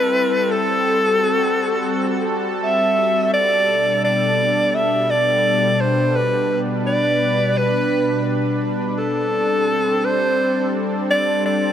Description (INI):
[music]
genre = synthwave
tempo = 85 BPM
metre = 4/4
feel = straight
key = G major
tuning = A4 = 440 Hz
[part]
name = clear alto saxophone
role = melody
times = 0.0-11.7 s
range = A4 to E5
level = -18 LUFS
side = equal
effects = tape echo
[part]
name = lush unison pad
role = sustained chords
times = 0.0-11.7 s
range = B2 to B4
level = -20 LUFS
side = equal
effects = chorus
[sound]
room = moderate lush hall reverb, RT60 2.5 s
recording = none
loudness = -16 LUFS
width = side -9 dB against mid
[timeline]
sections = 0.0-11.7 A section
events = none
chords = 0.0 Am7; 3.3 Gadd9; 9.0 D7sus4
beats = | 0.52 1.22 1.93 2.63 | 3.34 4.04 4.75 5.46 | 6.16 6.87 7.57 8.28 | 8.99 9.69 10.40 11.10